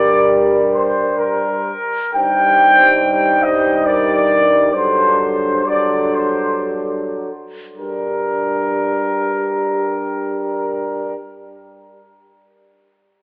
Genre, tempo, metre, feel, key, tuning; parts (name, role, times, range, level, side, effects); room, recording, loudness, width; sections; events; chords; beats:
classical, hymn-like piece for brass band; 52-70 BPM; 3/4; rubato; G minor; A4 = 442 Hz
dark trumpet section; melody; 0.0-11.1 s; Bb4 to G5; -16 LUFS; equal
dark French horn section; second line; 0.0-11.2 s; G4 to C5; -21 LUFS; equal
clear trombone; accompaniment; 0.0-11.1 s; F#3 to G3; -23 LUFS; equal
mellow euphonium; accompaniment; 0.0-11.1 s; G3 to Eb4; -24 LUFS; equal
mellow tuba; bass; 0.0-11.1 s; G2; -28 LUFS; equal
wet church reverb, RT60 3.3 s; telephone sound; -13 LUFS; side -25 dB against mid
0.0-2.1 A section; 2.1-7.8 B section; 7.8-11.1 C section
slowing down 0.7-7.8
0.0 Gm; 2.1 Cm/G; 4.7 D7/G; 7.8 Gm
0.27 1.18 | 2.14 3.01 3.87 | 4.74 5.66 6.66 | 7.77 8.88 9.98